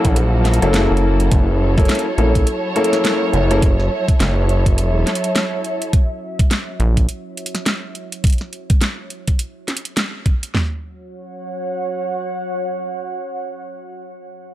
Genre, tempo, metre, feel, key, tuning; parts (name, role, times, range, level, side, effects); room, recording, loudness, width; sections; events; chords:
glitch hop; 104 BPM; 4/4; swing 60% on 16ths; F# minor pentatonic; A4 = 435 Hz
dark studio string section; sustained chords; 0.0-5.9 s; F#3 to C#5; -22 LUFS; right 1 dB; sidechain pumping
dark baby grand piano; stabs; 0.0-3.7 s; A#3 to A4; -20 LUFS; left 2 dB; sidechain pumping, analog delay
gritty driven synth bass; bass; 0.0-5.0 s; F#1 to A#1; -16 LUFS; equal; tube saturation
dubstep drum kit; drums; 0.0-10.7 s; kick drum, snare drum, toms; -15 LUFS; equal; small room ambience
dubstep drum kit; drums; 0.0-10.5 s; hi-hat, snare drum; -22 LUFS; equal; small room ambience
deep dark ambient pad; texture; 0.0-13.6 s; F#4 to F#5; -28 LUFS; right 1 dB; chorus, built-in reverb, sidechain pumping
rubbery square bass; bass; 0.9-2.5, 6.8-7.1 s; F#1 to A#1; -15 LUFS; equal
digital ambience; dry, gritty hardware recording, transformer saturation; -16 LUFS; side -14 dB against mid
0.0-10.5 A section; 10.5-12.9 B section
drop 0.0-10.5; band accent 10.0
0.0 F#7#9; 10.5 F#5